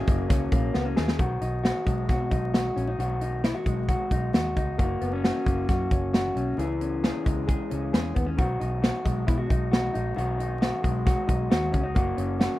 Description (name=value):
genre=jangly indie pop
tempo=134 BPM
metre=4/4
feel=straight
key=B major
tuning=A4 = 440 Hz
part: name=electric guitar through a small old amp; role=arpeggios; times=0.0-12.6 s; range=D#3 to G#4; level=-28 LUFS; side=left 2 dB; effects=tape echo
part: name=vintage muted fingered electric bass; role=bass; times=0.0-12.5 s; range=F#1 to B2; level=-30 LUFS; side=equal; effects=none
part: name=modern studio drum kit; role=drums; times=0.1-12.5 s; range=hi-hat, kick drum, snare drum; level=-25 LUFS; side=equal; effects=none
room=light reverb, studio reverb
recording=rough home demo mix, vinyl crackle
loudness=-23 LUFS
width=side -16 dB against mid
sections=0.0-1.2 A section; 1.2-12.6 B section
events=drum fill 0.7-1.2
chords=0.0 F#add9; 1.2 B6; 4.8 F#; 6.6 C#m; 8.4 B6; 12.0 F#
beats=0.30 0.75 | 1.20 1.65 2.09 2.54 | 2.99 3.44 3.89 4.34 | 4.79 5.24 5.69 6.14 | 6.59 7.04 7.49 7.94 | 8.39 8.84 9.28 9.73 | 10.18 10.62 11.07 11.52 | 11.96 12.41